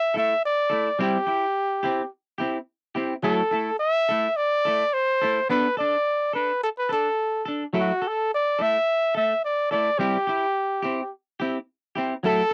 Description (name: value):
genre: highlife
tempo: 107 BPM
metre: 4/4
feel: straight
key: unclear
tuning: A4 = 440 Hz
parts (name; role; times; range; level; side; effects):
- warm trumpet; melody; 0.0-12.5 s; F#4 to E5; -24 LUFS; equal; none
- semi-hollow electric guitar; accompaniment; 0.1-12.5 s; F#3 to A4; -29 LUFS; equal; lush chorus
room: light reverb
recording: dry, close 1970s-style studio recording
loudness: -24 LUFS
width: mono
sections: 0.0-12.5 A section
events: none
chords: 0.0 Dsus2; 1.0 C; 3.2 Dsus2; 5.5 Bm7; 7.7 F#m7 (rootless); 10.0 C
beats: 0.43 | 1.00 1.56 2.12 2.68 | 3.24 3.80 4.37 4.93 | 5.49 6.05 6.61 7.17 | 7.74 8.30 8.86 9.42 | 9.98 10.55 11.11 11.67 | 12.24